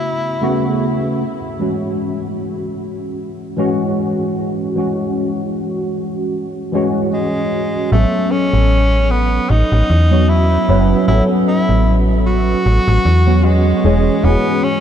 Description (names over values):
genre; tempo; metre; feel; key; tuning
vaporwave; 76 BPM; 4/4; swing 55% on 16ths; unclear; A4 = 439 Hz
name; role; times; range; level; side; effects
breathy tenor saxophone; melody; 0.0-1.2, 7.1-14.8 s; G#3 to F#4; -20 LUFS; equal; tape echo
mellow tine electric piano; accompaniment; 0.0-14.8 s; C#3 to B4; -17 LUFS; equal; overdrive, ensemble chorus
slap-like FM bass; bass; 7.9-14.4 s; E1 to E2; -13 LUFS; equal; none
room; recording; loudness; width
moderate huge ambient reverb, RT60 6.2 s; dark, warm production; -13 LUFS; side -9 dB against mid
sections
0.0-7.9 A section; 7.9-14.8 B section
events
none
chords
0.0 A69; 1.2 E69; 7.9 A69; 13.8 E69